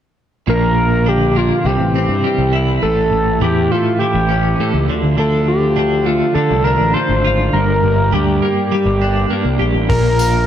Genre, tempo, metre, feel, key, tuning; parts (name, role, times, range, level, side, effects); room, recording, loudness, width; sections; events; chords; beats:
psychedelic rock; 102 BPM; 4/4; straight; D minor; A4 = 441 Hz
overdriven synth lead; melody; 0.5-10.5 s; F4 to C5; -17 LUFS; equal; distortion, analog delay
bright tonewheel organ; sustained chords; 0.5-10.5 s; E3 to G4; -26 LUFS; right 6 dB; slow rotary speaker, overdrive
twelve-string electric guitar; riff; 0.5-10.5 s; G2 to G4; -18 LUFS; equal; tremolo, double-tracked left and right, analog delay
fuzz picked electric bass; bass; 0.5-10.5 s; G1 to D3; -17 LUFS; equal; overdrive
cloth-damped thuddy drum kit; drums; 9.9-10.3 s; hi-hat, kick drum; -21 LUFS; equal
tambourine; percussion; 9.9-10.3 s; -30 LUFS; left 8 dB
moderate spring reverb, RT60 1.2 s; echo-heavy mix; -13 LUFS; side -10 dB against mid
0.5-10.5 A section
0.5 Bb; 1.6 C; 2.8 A; 4.9 Dm; 7.5 Gm; 9.9 Bb
| 0.47 1.06 1.65 2.24 | 2.83 3.42 4.01 4.59 | 5.18 5.77 6.36 6.95 | 7.54 8.13 8.72 9.30 | 9.89